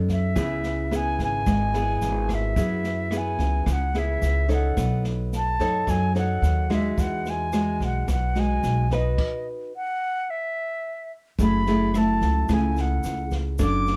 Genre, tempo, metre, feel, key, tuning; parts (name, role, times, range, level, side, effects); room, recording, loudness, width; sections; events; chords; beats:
bossa nova; 109 BPM; 4/4; straight; C# minor; A4 = 439 Hz
nylon-string guitar; accompaniment; 0.0-14.0 s; B2 to C#5; -29 LUFS; equal
upright bass; bass; 0.0-14.0 s; F#1 to F#2; -27 LUFS; equal
concert flute; melody; 0.1-14.0 s; D#5 to D6; -30 LUFS; equal; plate reverb
open jazz drum kit; drums; 0.1-13.9 s; crash cymbal, kick drum, rim click, snare drum; -32 LUFS; equal
tube shaker; percussion; 0.1-14.0 s; -51 LUFS; equal
light reverb; dark, warm production; -24 LUFS; mono
0.0-11.4 A section; 11.4-14.0 B section
stop 9.2-11.4
0.4 C#m7; 2.6 F#9sus4; 4.8 B9; 7.0 Emaj9; 9.2 D#m; 10.3 N.C.; 11.4 F#m9
| 0.36 0.92 1.47 2.02 | 2.57 3.12 3.67 4.22 | 4.77 5.32 5.88 6.43 | 6.98 7.53 8.08 8.63 | 9.18 9.74 10.29 10.84 | 11.39 11.94 12.49 13.04 | 13.60